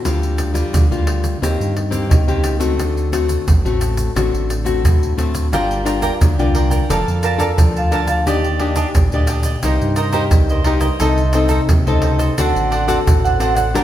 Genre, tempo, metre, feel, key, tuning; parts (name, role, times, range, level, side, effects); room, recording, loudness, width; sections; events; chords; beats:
samba and choro; 88 BPM; 4/4; straight; A4 = 441 Hz
nylon-string guitar; accompaniment; 0.0-13.8 s; G2 to Bb4; -20 LUFS; left 4 dB
round analog bass; bass; 0.1-13.8 s; F1 to G2; -19 LUFS; equal
egg shaker, surdo and pandeiro; percussion; 0.1-13.8 s; -19 LUFS; right 1 dB
cavaquinho; accompaniment; 5.5-13.8 s; D4 to A5; -20 LUFS; right 4 dB
wet stone room reverb, RT60 1.4 s; band playing live in one room; -14 LUFS; side -12 dB against mid
0.0-13.8 A section
0.1 Gm7/D; 1.4 Cm7/Eb; 2.8 D7; 5.5 Gm7; 6.9 Bbmaj7/F; 8.3 Ebmaj7; 9.6 Cm7; 11.0 Adim/C; 12.4 D7
| 0.05 0.74 1.42 2.11 | 2.79 3.48 4.16 4.85 | 5.53 6.22 6.90 7.58 | 8.27 8.95 9.64 10.32 | 11.01 11.69 12.38 13.06 | 13.75